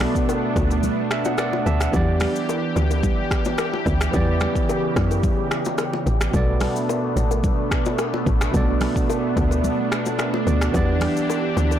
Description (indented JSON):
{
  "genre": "afrobeats",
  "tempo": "109 BPM",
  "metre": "4/4",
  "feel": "straight",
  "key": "B minor",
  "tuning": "A4 = 439 Hz",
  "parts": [
    { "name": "barky tine electric piano", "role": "accompaniment", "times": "0.0-11.8 s", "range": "B2 to A5", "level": "-26 LUFS", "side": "right 3 dB", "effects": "none" },
    { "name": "lush unison pad", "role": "sustained chords", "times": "0.0-11.8 s", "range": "C#3 to G4", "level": "-25 LUFS", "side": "right 1 dB", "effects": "chorus, phaser" },
    { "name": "woody log drum bass", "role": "bass", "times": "0.0-11.8 s", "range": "A1 to F#2", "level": "-21 LUFS", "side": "equal", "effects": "none" },
    { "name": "afro-pop drum kit", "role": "drums", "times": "0.0-11.8 s", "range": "finger snaps, hi-hat, kick drum, rim click, shaker", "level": "-25 LUFS", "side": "equal", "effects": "soft clipping on snare" },
    { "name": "congas and bongos", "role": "percussion", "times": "0.0-11.8 s", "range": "none", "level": "-28 LUFS", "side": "left 5 dB", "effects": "none" }
  ],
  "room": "little or no reverb",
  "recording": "blown-out, overdriven recording, overdrive",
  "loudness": "-19 LUFS",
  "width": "side -10 dB against mid",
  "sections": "0.0-11.8 A section",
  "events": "tine electric piano fill 0.8-1.9",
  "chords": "0.0 Bm7; 1.9 Em7; 6.3 Bm7; 10.7 Em7",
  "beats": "0.28 0.83 1.39 | 1.94 2.49 3.04 3.59 | 4.14 4.69 5.24 5.79 | 6.34 6.89 7.44 7.99 | 8.54 9.09 9.64 10.19 | 10.74 11.29"
}